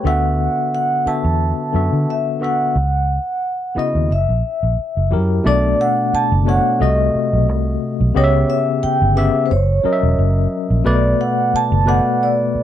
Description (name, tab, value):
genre	lush 1970s-style soul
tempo	89 BPM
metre	4/4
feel	swing 54% on 16ths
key	B minor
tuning	A4 = 437 Hz
part	vibraphone with soft mallets	melody	0.0-12.6 s	C5 to A5	-19 LUFS	right 2 dB	none
part	tine electric piano	accompaniment	0.0-12.6 s	B2 to E5	-19 LUFS	left 4 dB	fast stereo tremolo
part	vintage muted fingered electric bass	bass	0.0-12.6 s	E1 to D3	-16 LUFS	right 1 dB	none
room	small room ambience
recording	dry, close 1970s-style studio recording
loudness	-14 LUFS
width	side -11 dB against mid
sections	0.0-5.5 A section; 5.5-12.6 B section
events	none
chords	0.0 D69; 2.8 C#m11; 4.1 F#7b9; 5.5 Bm9; 6.8 Cdim7; 8.2 C#m7b5; 9.5 F#7; 10.9 Bm7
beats	| 0.04 0.72 1.40 2.07 | 2.75 3.43 4.10 4.78 | 5.45 6.13 6.80 7.48 | 8.15 8.83 9.50 10.18 | 10.85 11.53 12.20